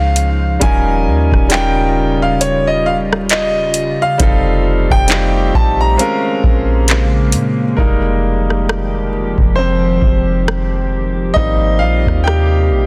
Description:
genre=contemporary R&B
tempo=67 BPM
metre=4/4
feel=swing 58% on 16ths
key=unclear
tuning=A4 = 440 Hz
part: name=clear concert grand piano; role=melody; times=0.0-6.8 s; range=Db5 to Bb5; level=-20 LUFS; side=equal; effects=tape echo
part: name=clear baby grand piano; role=accompaniment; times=0.0-12.9 s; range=G3 to G5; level=-20 LUFS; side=equal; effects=none
part: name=glassy FM pad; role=sustained chords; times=0.0-12.9 s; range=C3 to G4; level=-24 LUFS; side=equal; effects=ensemble chorus, built-in reverb
part: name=soft 808-style bass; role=bass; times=0.0-12.9 s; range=Eb1 to Bb2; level=-19 LUFS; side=equal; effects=none
part: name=booming analog drum machine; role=drums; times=0.2-12.5 s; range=handclaps, hi-hat, kick drum, rim click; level=-18 LUFS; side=equal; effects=none
room=little or no reverb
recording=dense, heavily limited modern master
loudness=-14 LUFS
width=mono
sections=0.0-7.8 A section; 7.8-12.9 B section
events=hi-hats muted 7.8-12.9; grand piano solo 7.8-12.9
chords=0.0 Dbmaj9; 0.6 Eb9; 4.2 F9; 6.0 Bbm9; 7.8 Fm9; 11.4 Abmaj9

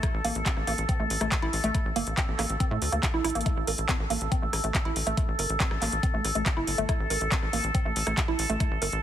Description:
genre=psychedelic trance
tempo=140 BPM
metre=4/4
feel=straight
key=A phrygian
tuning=A4 = 439 Hz
part: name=overtone-sweeping drone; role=sustained chords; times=0.0-9.0 s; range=A4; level=-33 LUFS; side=equal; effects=chorus, built-in reverb, sidechain pumping
part: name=woody wave-folded pluck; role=riff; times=0.0-8.9 s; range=A3 to Bb4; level=-32 LUFS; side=moving between left 2 dB and right 5 dB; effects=chorus, auto-pan, sidechain pumping, tape echo
part: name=drum and bass drum kit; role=drums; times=0.0-9.0 s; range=handclaps, hi-hat, rim click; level=-31 LUFS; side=equal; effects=none
part: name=electronic kick drum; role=drums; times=0.0-8.7 s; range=none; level=-27 LUFS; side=equal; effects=none
part: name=tight sequencer bass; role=bass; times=0.1-9.0 s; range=G1 to A2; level=-31 LUFS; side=equal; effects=none
room=light reverb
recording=heavily compressed radio sound, multiband compression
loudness=-24 LUFS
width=side -10 dB against mid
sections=0.0-9.0 A section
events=drum fill 3.2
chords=0.0 A5

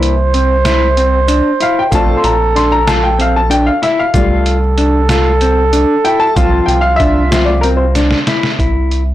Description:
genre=progressive instrumental, band music in an uneven meter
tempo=189 BPM (eighths)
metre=7/8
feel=straight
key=C mixolydian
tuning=A4 = 440 Hz
part: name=mellow flugelhorn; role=second line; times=0.0-8.3 s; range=F4 to C5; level=-16 LUFS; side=right 4 dB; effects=digital delay, plate reverb
part: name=warm baby grand piano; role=accompaniment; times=0.0-8.6 s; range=E3 to C6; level=-15 LUFS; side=left 3 dB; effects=plate reverb
part: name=mellow electric guitar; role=arpeggios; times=0.0-9.0 s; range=C4 to F4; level=-17 LUFS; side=left 2 dB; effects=plate reverb
part: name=rubbery square bass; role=bass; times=0.0-9.1 s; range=Bb1 to C2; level=-14 LUFS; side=equal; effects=none
part: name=trip hop sampler-style drum kit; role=drums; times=0.0-9.1 s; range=hi-hat, kick drum, snare drum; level=-17 LUFS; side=equal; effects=none
part: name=tube shaker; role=percussion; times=0.7-8.3 s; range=none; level=-35 LUFS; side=right 8 dB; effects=none
room=light reverb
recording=blown-out, overdriven recording, overdrive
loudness=-10 LUFS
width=side -13 dB against mid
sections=0.0-8.6 A section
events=grand piano solo 0.0-8.6; drum fill 8.0-8.6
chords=0.0 C; 1.9 Bbmaj7; 4.1 F6/C; 6.4 Dm7/C; 8.6 C

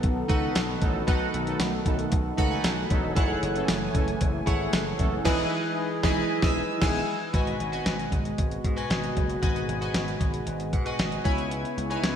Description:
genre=1980s-style pop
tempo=115 BPM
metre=4/4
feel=straight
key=unclear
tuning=A4 = 440 Hz
part: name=chorused retro synth keys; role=accompaniment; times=0.0-12.2 s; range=G#2 to E6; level=-29 LUFS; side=equal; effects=none
part: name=warm analog pad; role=sustained chords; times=0.0-12.2 s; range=B2 to G#5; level=-33 LUFS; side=equal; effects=chorus
part: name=gritty slap bass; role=bass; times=0.0-12.2 s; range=E1 to G#2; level=-32 LUFS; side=equal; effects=overdrive
part: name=clean 12-bit digital drum machine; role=drums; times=0.0-12.2 s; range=crash cymbal, hi-hat, kick drum, snare drum, tambourine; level=-27 LUFS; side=equal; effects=gated reverb
part: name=analog synth brass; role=stabs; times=0.8-7.0 s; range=D#3 to A4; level=-36 LUFS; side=right 1 dB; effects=chorus
room=moderate lush hall reverb, RT60 1.9 s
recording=bright 1980s-style digital production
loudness=-24 LUFS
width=side -8 dB against mid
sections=0.0-7.3 A section; 7.3-12.2 B section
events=synth keys fill 2.1-3.2, 10.5-11.5; band accent 5.3-7.3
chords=0.0 B7; 3.2 F#m9; 5.3 Emaj7; 7.3 G#m7; 11.3 C#m7

